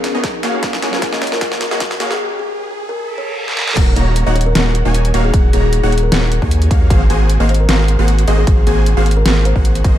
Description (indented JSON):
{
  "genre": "future bass",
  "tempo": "153 BPM",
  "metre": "4/4",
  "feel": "swing 54% on 16ths, half-time",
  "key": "Eb minor",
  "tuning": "A4 = 442 Hz",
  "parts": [
    { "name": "kalimba", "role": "melody", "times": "0.0-10.0 s", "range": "Ab4 to Eb5", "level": "-23 LUFS", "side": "left 3 dB", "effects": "sidechain pumping, tape echo" },
    { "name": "soft round pluck", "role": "accompaniment", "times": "0.0-2.2 s", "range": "Gb3 to F5", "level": "-28 LUFS", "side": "right 1 dB", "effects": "lush chorus, sidechain pumping, ping-pong delay" },
    { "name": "ethereal airy pad", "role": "sustained chords", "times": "0.0-2.2 s", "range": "Gb3 to Bb4", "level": "-32 LUFS", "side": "left 2 dB", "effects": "ensemble chorus, built-in reverb, phaser, sidechain pumping" },
    { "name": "supersaw stab", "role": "riff", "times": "0.0-10.0 s", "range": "Bb3 to Bb5", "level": "-20 LUFS", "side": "equal", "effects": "sidechain pumping" },
    { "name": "saturated sub bass", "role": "bass", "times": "0.0-10.0 s", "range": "Eb1 to Eb2", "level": "-14 LUFS", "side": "equal", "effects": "tube saturation, sidechain pumping, high-pass filter" },
    { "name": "dubstep drum kit", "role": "drums", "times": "0.0-9.9 s", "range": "crash cymbal, hi-hat, snare drum", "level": "-20 LUFS", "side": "equal", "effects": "overdrive, high-pass filter on snare, high-pass filter on hats, high-pass filter on cymbals, high-pass filter on room" },
    { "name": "riser and reverse cymbal", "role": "sound effects", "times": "0.3-3.8 s", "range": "none", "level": "-25 LUFS", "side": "right 2 dB", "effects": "none" },
    { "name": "electronic kick drum", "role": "drums", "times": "0.2-9.9 s", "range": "none", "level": "-14 LUFS", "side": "equal", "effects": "overdrive" }
  ],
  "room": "digital ambience",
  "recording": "dark, warm production, high-pass filter",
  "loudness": "-12 LUFS",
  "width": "side -12 dB against mid",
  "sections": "0.0-3.8 A section; 3.8-10.0 B section",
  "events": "build-up 0.0-3.8; drum fill 0.0-2.2, 3.5; filter sweep 0.0-3.8; riser 0.3-3.8; break 2.2-3.8; reverse cymbal 3.0-3.8; drop 3.8-10.0",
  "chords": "0.4 Gbmaj9; 3.8 Ebm7; 6.9 Ab13",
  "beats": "0.24 | 0.63 1.02 1.42 1.81 | 2.20 2.59 2.98 3.38 | 3.77 4.16 4.55 4.95 | 5.34 5.73 6.12 6.51 | 6.91 7.30 7.69 8.08 | 8.47 8.87 9.26 9.65"
}